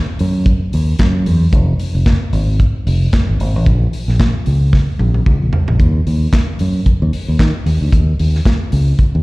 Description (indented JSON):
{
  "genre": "disco",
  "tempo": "112 BPM",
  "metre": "4/4",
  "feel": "swing 56% on 16ths",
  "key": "unclear",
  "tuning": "A4 = 440 Hz",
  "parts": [
    { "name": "fingered electric bass", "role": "bass", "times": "0.2-9.2 s", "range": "F1 to Eb3", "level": "-14 LUFS", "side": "equal", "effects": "none" },
    { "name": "modern studio drum kit", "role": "drums", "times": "0.2-9.1 s", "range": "handclaps, hi-hat, kick drum, snare drum, toms", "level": "-16 LUFS", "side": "equal", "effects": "none" }
  ],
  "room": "little or no reverb",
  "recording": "live gig heard through the venue's PA, recital hall reverb",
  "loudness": "-12 LUFS",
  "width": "side -22 dB against mid",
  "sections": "0.0-5.8 A section; 5.8-9.2 B section",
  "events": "drum fill 4.7-5.8",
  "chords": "none",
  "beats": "0.46 0.99 | 1.53 2.06 2.59 3.13 | 3.66 4.20 4.73 5.26 | 5.79 6.33 6.86 7.39 | 7.93 8.46 8.99"
}